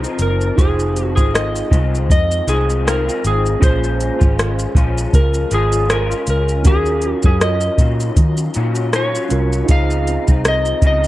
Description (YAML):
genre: indie pop, bedroom pop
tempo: 79 BPM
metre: 4/4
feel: swing 55% on 16ths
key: unclear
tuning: A4 = 439 Hz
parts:
  - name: electric guitar through a small old amp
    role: accompaniment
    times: 0.0-11.1 s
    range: F2 to F4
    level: -24 LUFS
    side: left 4 dB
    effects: ensemble chorus, vibrato effect
  - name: reed electric piano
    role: accompaniment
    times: 0.0-11.1 s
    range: Db4 to Eb5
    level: -26 LUFS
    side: right 5 dB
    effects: fast tremolo, cassette tape
  - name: vintage muted fingered electric bass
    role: bass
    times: 0.0-11.1 s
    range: F1 to Eb3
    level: -19 LUFS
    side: equal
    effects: none
  - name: soft vintage rhythm box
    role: drums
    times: 0.0-11.1 s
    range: hi-hat, kick drum, rim click, shaker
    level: -15 LUFS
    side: equal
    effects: none
  - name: clean lap steel guitar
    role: melody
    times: 0.2-11.1 s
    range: Ab4 to F5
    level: -21 LUFS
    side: equal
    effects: analog chorus, tape echo
room: light reverb, digital ambience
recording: dark, warm production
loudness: -14 LUFS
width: side -16 dB against mid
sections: 0.0-11.1 A section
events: none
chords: 0.0 Dbmaj9 (rootless); 0.6 Fm7; 3.6 Bbm7; 6.7 Ebm9; 9.7 Dbmaj9